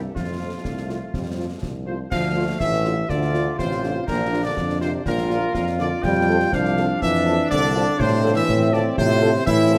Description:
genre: military-style march for wind band.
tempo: 122 BPM.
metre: 2/4.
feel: straight.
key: F major.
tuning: A4 = 440 Hz.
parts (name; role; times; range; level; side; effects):
dark euphonium; second line; 0.0-9.8 s; F2 to G3; -28 LUFS; equal; none.
warm trombone section; sustained chords; 0.0-9.8 s; E3 to F4; -30 LUFS; equal; none.
warm tuba; bass; 0.0-9.8 s; A1 to A2; -26 LUFS; equal; none.
clear trumpet section; melody; 0.1-9.8 s; F4 to G5; -28 LUFS; equal; none.
concert snare drum, concert bass drum and clash cymbals; drums; 0.2-9.7 s; none; -34 LUFS; equal; none.
mellow French horn section; accompaniment; 0.4-9.8 s; A3 to A4; -32 LUFS; equal; none.
room: moderate concert hall reverb, RT60 2.0 s.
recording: none.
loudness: -21 LUFS.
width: mono.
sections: 0.0-2.1 A section; 2.1-9.8 A section.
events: none.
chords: 0.2 F; 2.1 Dm; 4.1 Bb; 6.0 F; 8.0 F/A.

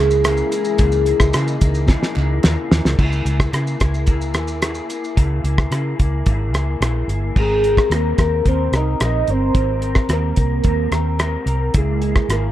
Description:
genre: indie pop, bedroom pop.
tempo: 110 BPM.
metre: 4/4.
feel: straight.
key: unclear.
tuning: A4 = 440 Hz.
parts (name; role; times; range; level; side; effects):
soft octave-layered synth lead; melody; 0.0-2.4, 7.4-12.5 s; Ab4 to Eb5; -20 LUFS; equal; phaser, lush chorus.
electric guitar through a small old amp; accompaniment; 0.0-12.5 s; Db3 to Bb4; -26 LUFS; left 2 dB; ensemble chorus, warbly pitch drift.
lush unison pad; sustained chords; 0.0-3.0 s; Db3 to Fb4; -30 LUFS; right 2 dB; chorus.
vintage muted fingered electric bass; bass; 0.0-12.5 s; G1 to Db3; -20 LUFS; equal; none.
cloth-damped thuddy drum kit; drums; 0.1-12.4 s; crash cymbal, hi-hat, kick drum, rim click, shaker, snare drum; -18 LUFS; equal; none.
group handclap; percussion; 0.2-2.6 s; none; -35 LUFS; right 3 dB; none.
room: light reverb, small room ambience.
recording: dark, warm production.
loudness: -16 LUFS.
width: side -13 dB against mid.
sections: 0.0-3.0 A section; 3.0-7.4 B section; 7.4-12.5 C section.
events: drum fill 1.9-3.0.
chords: 0.0 Dbm6; 7.4 Abmaj9; 11.7 Dbm6.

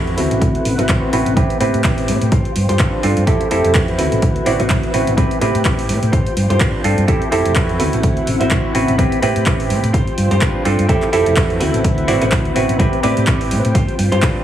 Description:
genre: filtered disco house.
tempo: 126 BPM.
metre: 4/4.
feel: swing 56% on 16ths.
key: unclear.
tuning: A4 = 440 Hz.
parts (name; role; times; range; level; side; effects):
clav; accompaniment; 0.0-14.4 s; C4 to D5; -20 LUFS; right 1 dB; phaser, vintage 12-bit sampler grit, sidechain pumping, low-pass filter.
string machine, full ensemble; sustained chords; 0.0-14.4 s; C4 to B5; -24 LUFS; left 1 dB; ensemble chorus, sidechain pumping, low-pass filter.
semi-hollow electric guitar; riff; 0.0-14.4 s; C4 to D5; -22 LUFS; right 2 dB; sidechain pumping, low-pass filter.
hollow-body short-scale fingered electric bass; bass; 0.0-14.3 s; F1 to A2; -19 LUFS; equal; sidechain pumping, low-pass filter.
punchy analog drum machine; drums; 0.1-14.3 s; handclaps, hi-hat; -24 LUFS; equal; overdrive, sidechain pumping on hats, small room ambience, sidechain pumping on cymbals.
electronic kick drum; drums; 0.4-14.3 s; none; -18 LUFS; equal; overdrive, small room ambience.
room: light reverb.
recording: heavily compressed radio sound, multiband compression, studio reverb.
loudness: -13 LUFS.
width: side -11 dB against mid.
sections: 0.0-14.4 A section.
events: filter sweep 0.0-14.4.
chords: 0.2 D13; 1.4 Am9; 2.3 G7sus4; 3.3 Fmaj9; 4.0 D13; 5.2 Am9; 6.1 G7sus4; 7.1 Fmaj9; 7.8 D13; 9.0 Am9; 9.9 G7sus4; 10.9 Fmaj9; 11.6 D13; 12.8 Am9; 13.7 G7sus4.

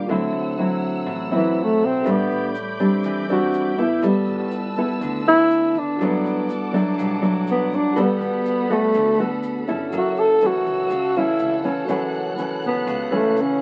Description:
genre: bossa nova.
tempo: 122 BPM.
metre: 4/4.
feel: straight.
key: G major.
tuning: A4 = 441 Hz.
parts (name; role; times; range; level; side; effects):
nylon-string guitar; accompaniment; 0.0-13.6 s; F#2 to A4; -25 LUFS; equal; none.
tine electric piano; accompaniment; 0.0-13.6 s; E4 to F#5; -34 LUFS; equal; none.
rich studio violin section; sustained chords; 0.0-13.6 s; A4 to G6; -36 LUFS; equal; none.
upright bass; bass; 0.0-13.6 s; F#1 to E2; -40 LUFS; equal; none.
breathy tenor saxophone; melody; 1.4-13.6 s; E3 to A4; -22 LUFS; equal; none.
egg shaker; percussion; 2.1-13.6 s; none; -59 LUFS; equal; none.
room: moderate small room reverb, RT60 0.5 s.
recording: very old 78 rpm record, vinyl crackle.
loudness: -21 LUFS.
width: mono.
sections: 0.0-9.9 A section; 9.9-13.6 A section.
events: tenor saxophone solo 0.0-13.6.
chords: 0.1 D9; 2.1 Am11; 4.0 G69; 6.0 Em11/G; 8.0 Gmaj9; 9.9 F#m7.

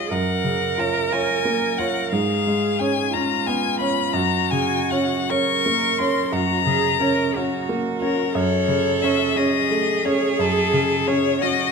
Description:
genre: classical, slow romantic movement for piano trio.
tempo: 59 BPM (dotted quarters).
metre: 12/8.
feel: rubato.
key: unclear.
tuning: A4 = 437 Hz.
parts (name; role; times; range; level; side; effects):
rich violin; melody; 0.0-11.7 s; A4 to Db6; -23 LUFS; left 10 dB; none.
clear cello; second line; 0.0-11.7 s; F4 to Bb4; -24 LUFS; right 6 dB; none.
clear baby grand piano; accompaniment; 0.0-11.7 s; Db2 to Db5; -22 LUFS; right 1 dB; none.
room: moderate recital hall reverb, RT60 1.7 s.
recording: close, detailed microphones.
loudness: -18 LUFS.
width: side -5 dB against mid.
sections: 0.0-11.7 A section.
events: none.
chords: 0.1 Gbmaj7; 2.1 Db7/Ab; 4.2 Gb; 8.3 F#m.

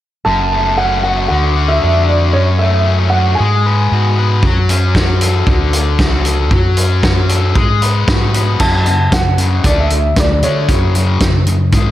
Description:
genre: indie rock.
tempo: 115 BPM.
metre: 4/4.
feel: straight.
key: F# minor.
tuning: A4 = 439 Hz.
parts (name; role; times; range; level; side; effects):
dark upright piano; melody; 0.2-4.1, 8.6-10.9 s; C#5 to A5; -17 LUFS; right 2 dB; slapback echo, digital delay.
fuzz guitar; riff; 0.3-11.9 s; F#2 to B4; -17 LUFS; left 5 dB; distortion, slapback echo.
fingered electric bass; bass; 0.3-11.9 s; F#1 to D3; -14 LUFS; equal; none.
loose indie drum kit; drums; 4.4-11.8 s; crash cymbal, hi-hat, kick drum, snare drum; -15 LUFS; equal; none.
room: light reverb, small room ambience.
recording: none.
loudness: -11 LUFS.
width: side -13 dB against mid.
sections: 0.3-8.6 A section; 8.6-11.9 B section.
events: none.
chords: 0.3 F#m; 1.3 D; 2.3 F#m; 3.4 G#m7; 4.4 F#m; 5.5 D; 6.5 F#m; 7.6 G#m7; 8.6 F#m; 9.6 D5; 10.7 F#5.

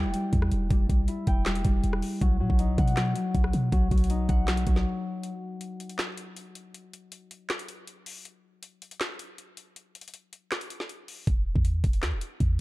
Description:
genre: hip hop, trap.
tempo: 159 BPM.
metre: 4/4.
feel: half-time.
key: E harmonic minor.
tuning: A4 = 440 Hz.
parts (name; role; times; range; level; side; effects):
Celtic harp; accompaniment; 0.0-6.8 s; F#3 to G5; -30 LUFS; left 2 dB; none.
clean 808-style bass; bass; 0.0-4.8, 11.3-12.6 s; E1 to B2; -27 LUFS; equal; none.
trap drum kit; drums; 0.1-12.5 s; handclaps, hi-hat, kick drum, rim click, snare drum; -27 LUFS; equal; none.
room: digital ambience.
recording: dark, warm production.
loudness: -24 LUFS.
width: side -19 dB against mid.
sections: 0.0-5.2 A section; 5.2-12.6 B section.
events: break 4.9-5.2, 5.2-11.3.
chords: 0.0 Em; 2.2 B; 5.2 N.C.; 11.3 E5.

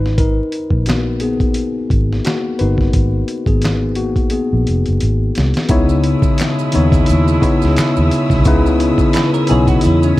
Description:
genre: R&B, neo-soul.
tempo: 87 BPM.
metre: 4/4.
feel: swing 56% on 16ths.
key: C# dorian.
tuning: A4 = 443 Hz.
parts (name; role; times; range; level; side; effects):
tine electric piano; accompaniment; 0.0-10.2 s; C#3 to C#5; -16 LUFS; left 2 dB; none.
vintage muted fingered electric bass; bass; 0.0-10.1 s; E#1 to E2; -16 LUFS; equal; none.
dusty soul sampler-style drum kit; drums; 0.1-10.2 s; handclaps, hi-hat, kick drum, snare drum; -17 LUFS; equal; none.
warm studio string section; sustained chords; 5.7-10.2 s; C#5 to E6; -27 LUFS; left 1 dB; none.
mellow saxophone section; stabs; 5.7-10.2 s; B2 to E4; -22 LUFS; right 4 dB; none.
maracas and finger snaps; percussion; 5.7-10.2 s; none; -32 LUFS; right 1 dB; none.
electric guitar through a small old amp; second line; 9.1-10.2 s; C#4 to B4; -20 LUFS; right 4 dB; analog chorus.
room: studio reverb.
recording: dark, warm production, vinyl crackle.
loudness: -12 LUFS.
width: side -17 dB against mid.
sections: 0.0-5.7 A section; 5.7-10.2 B section.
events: tine electric piano solo 0.0-5.7; drum fill 4.3-5.7.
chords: 0.0 G#m9; 5.7 C#m9.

